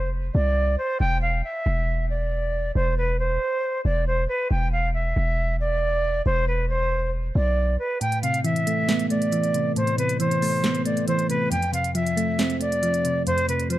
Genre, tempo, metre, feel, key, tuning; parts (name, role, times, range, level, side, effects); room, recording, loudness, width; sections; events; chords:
hip hop, trap; 137 BPM; 4/4; half-time; E phrygian; A4 = 440 Hz
breathy bright concert flute; melody; 0.0-13.8 s; B4 to G5; -25 LUFS; right 1 dB; low-pass filter
warm 808-style bass; bass; 0.0-7.8 s; E1 to C2; -23 LUFS; equal
soft electric-piano-like synth keys; accompaniment; 8.0-13.8 s; F2 to C4; -23 LUFS; equal; chorus, low-pass filter
trap drum kit; drums; 8.0-13.8 s; handclaps, hi-hat, snare drum; -30 LUFS; equal; overdrive
little or no reverb; dark, warm production; -21 LUFS; side -14 dB against mid
0.0-13.8 A section
kick muted 8.0-13.8
0.0 F5; 1.0 E5; 8.0 Amadd9; 11.5 F